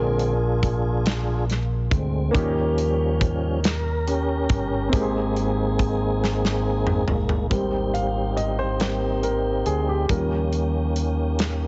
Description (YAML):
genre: slow gospel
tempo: 46 BPM (dotted quarters)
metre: 6/8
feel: straight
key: Ab major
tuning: A4 = 442 Hz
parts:
  - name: warm upright piano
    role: accompaniment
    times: 0.0-11.7 s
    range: Ab2 to F5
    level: -30 LUFS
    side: equal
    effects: none
  - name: tonewheel organ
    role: sustained chords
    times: 0.0-11.7 s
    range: D3 to Bb4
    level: -29 LUFS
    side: equal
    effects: overdrive, chorus vibrato, stopped rotary speaker
  - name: deep dub fingered electric bass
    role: bass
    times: 0.0-11.7 s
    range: G1 to Eb2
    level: -28 LUFS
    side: equal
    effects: none
  - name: modern studio drum kit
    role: drums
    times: 0.2-11.6 s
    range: hi-hat, kick drum, snare drum, toms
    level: -28 LUFS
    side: equal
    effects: none
room: light reverb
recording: heavily compressed radio sound, multiband compression, nothing above 7.8 kHz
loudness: -23 LUFS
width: mono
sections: 0.0-7.5 A section; 7.5-11.7 B section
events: tonewheel organ solo 0.0-7.5; drum fill 6.2-7.5; upright piano solo 7.5-11.7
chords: 0.0 Bb7; 2.3 Eb7; 4.9 Abmaj7; 10.1 Eb7